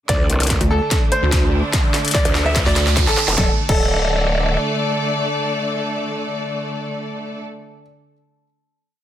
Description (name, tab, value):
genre	heavy wobble dubstep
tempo	146 BPM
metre	4/4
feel	half-time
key	unclear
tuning	A4 = 436 Hz
part	bright concert grand piano	melody	0.1-7.8 s	A4 to E5	-25 LUFS	right 1 dB	digital delay
part	warm studio string section	sustained chords	0.1-7.4 s	D3 to D5	-23 LUFS	equal	sidechain pumping
part	growl bass	bass	0.1-4.6 s	D1 to D2	-19 LUFS	equal	chorus, overdrive
part	dubstep drum kit	drums	0.1-3.8 s	crash cymbal, hi-hat, snare drum	-22 LUFS	left 1 dB	high-pass filter on snare, high-pass filter on hats, high-pass filter on cymbals
part	electronic kick drum	drums	0.1-3.8 s	none	-19 LUFS	equal	none
part	riser	sound effects	1.4-3.4 s	none	-25 LUFS	right 4 dB	none
part	pulsing pluck wobble bass	bass	0.6-3.1 s	D2	-17 LUFS	equal	chorus, overdrive
room	light reverb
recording	dense, heavily limited modern master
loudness	-16 LUFS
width	side -11 dB against mid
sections	0.1-3.4 build; 3.4-6.7 final chord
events	build-up 0.1-3.4; drum fill 0.1-3.4; riser 1.4-3.4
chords	0.1 D5